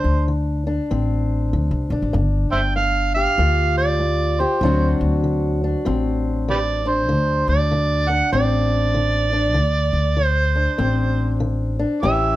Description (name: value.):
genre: acoustic country blues, solo or duo.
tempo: 97 BPM.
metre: 4/4.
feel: swing 62% on 8ths.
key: D mixolydian.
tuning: A4 = 440 Hz.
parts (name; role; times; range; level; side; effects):
overdriven harmonica; melody; 0.0-12.4 s; G4 to G5; -21 LUFS; right 3 dB; none.
fingerpicked old ladder-braced acoustic guitar; accompaniment; 0.0-12.4 s; G2 to G4; -23 LUFS; left 2 dB; none.
upright bass; bass; 0.0-12.4 s; G1 to D2; -20 LUFS; equal; none.
room: light reverb.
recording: none.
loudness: -17 LUFS.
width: side -15 dB against mid.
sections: 0.0-12.4 A section.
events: none.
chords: 0.0 D7(no3); 2.1 G5; 4.6 D7.